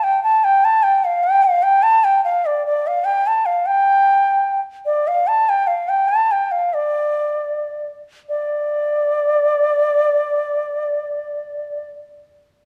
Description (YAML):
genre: chinese traditional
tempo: 68-102 BPM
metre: 2/4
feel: rubato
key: D yu mode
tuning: A4 = 443 Hz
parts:
  - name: bansuri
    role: solo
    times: 0.0-11.9 s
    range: D5 to A5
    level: -18 LUFS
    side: equal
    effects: none
room: moderate recital hall reverb, RT60 1.7 s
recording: none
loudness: -18 LUFS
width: mono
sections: 0.0-8.3 A section; 8.3-11.8 B section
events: slowing down 5.5-8.3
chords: none